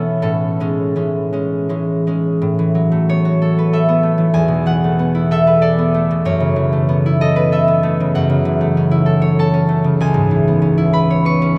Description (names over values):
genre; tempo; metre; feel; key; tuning
classical, solo harp piece; 79-99 BPM; 3/4; rubato; A major; A4 = 442 Hz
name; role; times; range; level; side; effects
concert harp; solo; 0.0-11.6 s; C#2 to C#6; -16 LUFS; equal; none
room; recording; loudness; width
wet cathedral reverb, RT60 5.6 s; in a vast, echoing space; -16 LUFS; mono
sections
0.0-2.4 A section; 2.4-11.6 B section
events
none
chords
0.2 Amaj7; 2.4 A69; 4.4 E9sus4; 6.3 F#m7; 8.1 A6/F#; 10.0 C#m7